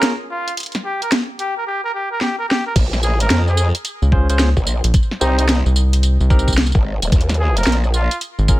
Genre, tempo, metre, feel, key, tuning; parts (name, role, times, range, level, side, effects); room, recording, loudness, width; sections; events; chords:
glitch hop; 110 BPM; 4/4; swing 64% on 16ths; Bb dorian; A4 = 440 Hz
mellow trumpet; melody; 0.0-8.2 s; Eb4 to Bb4; -23 LUFS; equal; digital delay
barky tine electric piano; stabs; 0.0-0.1, 4.1-8.6 s; C4 to C5; -24 LUFS; equal; sidechain pumping, digital delay
drum and bass drum kit; drums; 0.0-8.6 s; crash cymbal, hi-hat, snare drum, tambourine; -20 LUFS; equal; studio reverb
growl bass; bass; 2.8-8.1 s; Eb1 to F2; -17 LUFS; equal; chorus
electronic kick drum; drums; 2.8-8.6 s; -15 LUFS; equal; studio reverb
rubbery square bass; bass; 4.0-8.6 s; Ab1 to Db2; -15 LUFS; equal; tube saturation
light reverb; -15 LUFS; side -17 dB against mid
0.0-2.8 A section; 2.8-8.6 B section
build-up 0.0-2.8; drum fill 2.2-2.8; drop 2.8-8.6
0.0 Db6; 0.6 N.C.; 2.8 Bbm9; 4.9 Abmaj7 (rootless); 7.1 Ebsus4